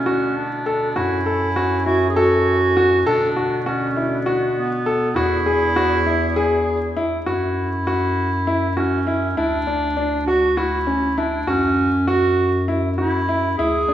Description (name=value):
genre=contemporary instrumental, chamber music in an uneven meter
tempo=200 BPM (eighths)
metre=7/8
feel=straight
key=F# minor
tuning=A4 = 438 Hz
part: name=clear clarinet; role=second line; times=0.0-13.9 s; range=B3 to G#4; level=-20 LUFS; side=right 2 dB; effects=none
part: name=warm woodwind section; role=sustained chords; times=0.0-7.2 s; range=D3 to G#5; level=-29 LUFS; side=equal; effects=none
part: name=dark bass clarinet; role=bass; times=0.0-13.9 s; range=D2 to B2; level=-24 LUFS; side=left 1 dB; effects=none
part: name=clear grand piano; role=arpeggios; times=0.1-13.9 s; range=C#4 to A4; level=-21 LUFS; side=left 2 dB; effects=none
room=wet recital hall reverb, RT60 1.6 s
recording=recorded in a church or concert hall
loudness=-17 LUFS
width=side -11 dB against mid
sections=0.0-7.3 A section; 7.3-13.9 B section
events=none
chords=0.0 Bm9; 1.0 F#m9; 3.1 Bm9; 5.2 E9; 7.3 F#5; 9.4 D; 11.5 F#5